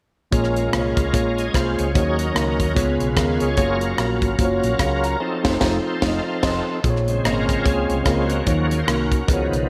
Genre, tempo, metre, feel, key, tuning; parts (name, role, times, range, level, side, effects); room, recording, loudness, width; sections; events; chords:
uptempo gospel; 147 BPM; 4/4; swing 60% on 8ths; Bb minor; A4 = 441 Hz
mellow tine electric piano; accompaniment; 0.3-9.7 s; Bb2 to C6; -25 LUFS; equal
bright tonewheel organ; sustained chords; 0.3-9.7 s; Db3 to A5; -26 LUFS; equal; slow rotary speaker, overdrive, chorus vibrato
hollow-body short-scale fingered electric bass; bass; 0.3-9.7 s; F1 to Eb2; -28 LUFS; equal
tight funk drum kit; drums; 0.3-9.6 s; crash cymbal, hi-hat, kick drum, rim click, snare drum; -25 LUFS; equal
wet lush hall reverb, RT60 2.2 s; dreamy mix soaked in reverb; -20 LUFS; mono
0.3-6.8 A section; 6.8-9.7 B section
band accent 5.2-6.8; tonewheel organ solo 6.8-9.7
0.3 Bbm7; 1.9 Ebm7; 2.8 Db7; 3.6 Gbmaj7; 5.2 F7; 6.8 Bbm7; 8.5 Ebm7